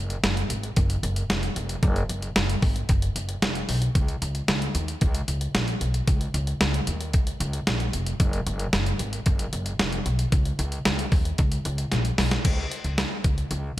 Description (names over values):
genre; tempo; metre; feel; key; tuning
synth-pop; 113 BPM; 4/4; straight; Db mixolydian; A4 = 441 Hz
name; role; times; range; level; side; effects
upright bass; bass; 0.0-13.8 s; F1 to Eb2; -26 LUFS; equal; none
detuned 8-bit digital drum machine; drums; 0.1-13.6 s; crash cymbal, hi-hat, kick drum, snare drum; -25 LUFS; equal; none
room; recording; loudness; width
light reverb; none; -22 LUFS; side -15 dB against mid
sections
0.0-12.4 A section; 12.4-13.8 B section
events
drum fill 11.9-12.4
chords
none